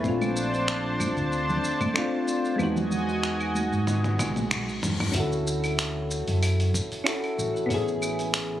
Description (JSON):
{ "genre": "sunset chillout", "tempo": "94 BPM", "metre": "4/4", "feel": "swing 54% on 16ths", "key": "unclear", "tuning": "A4 = 441 Hz", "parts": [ { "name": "soft electric-piano-like synth keys", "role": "accompaniment", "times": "0.0-8.6 s", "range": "G#3 to A4", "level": "-28 LUFS", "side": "equal", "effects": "chorus, auto-pan, digital delay" }, { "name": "lush unison pad", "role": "sustained chords", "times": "0.0-5.1 s", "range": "D4 to A5", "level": "-30 LUFS", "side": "equal", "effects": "chorus" }, { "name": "fingered electric bass", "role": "bass", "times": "0.0-8.6 s", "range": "E1 to G#2", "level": "-29 LUFS", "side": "equal", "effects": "none" }, { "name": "dusty soul sampler-style drum kit", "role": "drums", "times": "0.0-8.5 s", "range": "claves, finger snaps, hi-hat, shaker, toms", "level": "-31 LUFS", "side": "equal", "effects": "none" }, { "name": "electronic kick drum", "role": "drums", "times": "0.0-7.8 s", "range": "none", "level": "-32 LUFS", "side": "equal", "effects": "none" }, { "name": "congas", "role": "percussion", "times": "0.2-4.5 s", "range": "none", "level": "-33 LUFS", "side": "left 2 dB", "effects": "none" }, { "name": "reverse cymbal", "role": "sound effects", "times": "4.2-5.1 s", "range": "none", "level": "-38 LUFS", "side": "left 4 dB", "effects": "none" } ], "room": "light reverb, digital ambience", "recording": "recorded on a phone in the room, club reverb, compression", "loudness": "-24 LUFS", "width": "side -12 dB against mid", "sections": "0.0-5.2 A section; 5.2-8.6 B section", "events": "kick drops out 2.6-5.2; drum fill 3.9-5.2; reverse cymbal 4.2-5.2; band accent 4.5-4.8", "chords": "0.0 Bbmaj9; 2.6 Emaj9; 5.2 Dmaj9; 7.7 Amaj9" }